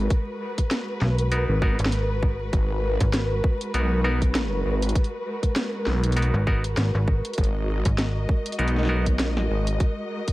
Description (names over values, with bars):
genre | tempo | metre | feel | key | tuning
glitch hop | 99 BPM | 4/4 | swing 57% on 16ths | G# minor | A4 = 439 Hz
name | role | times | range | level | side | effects
dark studio string section | sustained chords | 0.0-10.3 s | G#3 to D#5 | -29 LUFS | equal | sidechain pumping
phased detuned saw bass | bass | 0.0-9.8 s | G#1 to B1 | -23 LUFS | equal | phaser, tube saturation
drum and bass drum kit | drums | 0.1-10.3 s | hi-hat, snare drum | -29 LUFS | equal | none
electronic kick drum | drums | 0.1-10.3 s | none | -22 LUFS | equal | none
slap-like FM bass | bass | 1.0-8.3 s | G#1 to B1 | -24 LUFS | equal | none
bright clav | stabs | 1.3-9.1 s | B3 to A#4 | -31 LUFS | equal | sidechain pumping, dub echo
room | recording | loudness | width
little or no reverb | vinyl crackle | -21 LUFS | side -18 dB against mid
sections
0.0-10.3 A section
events
none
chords
0.0 G#m9